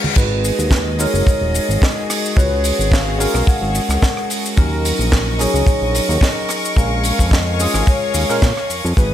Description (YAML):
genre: nu-disco, nu disco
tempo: 109 BPM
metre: 4/4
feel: swing 54% on 16ths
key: G# dorian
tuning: A4 = 440 Hz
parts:
  - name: tine electric piano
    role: accompaniment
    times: 0.0-9.1 s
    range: F#3 to B4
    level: -23 LUFS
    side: right 1 dB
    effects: lush chorus, sidechain pumping, ping-pong delay
  - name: clear studio string section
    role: sustained chords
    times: 0.0-9.1 s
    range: A#2 to D#6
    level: -26 LUFS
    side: left 3 dB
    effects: sidechain pumping
  - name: vibraphone with medium mallets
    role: melody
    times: 0.2-9.1 s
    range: A#4 to F#5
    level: -23 LUFS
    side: left 1 dB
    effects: vintage 12-bit sampler grit, digital delay
  - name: fat analog bass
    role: bass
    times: 0.2-9.1 s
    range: D#1 to A#2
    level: -20 LUFS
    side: equal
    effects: sidechain pumping
  - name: kick drum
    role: drums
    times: 0.2-9.1 s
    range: none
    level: -14 LUFS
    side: equal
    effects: studio reverb
  - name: tight funk drum kit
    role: drums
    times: 0.2-9.1 s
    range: crash cymbal, hi-hat, rim click, shaker, snare drum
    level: -22 LUFS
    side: right 1 dB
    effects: studio reverb
room: light reverb, small room ambience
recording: bright 1980s-style digital production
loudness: -14 LUFS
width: side -11 dB against mid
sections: 0.2-9.1 A section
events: drop 0.2-9.1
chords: 0.2 G#m7; 2.4 C#7sus4; 4.6 D#m7; 6.8 A#m7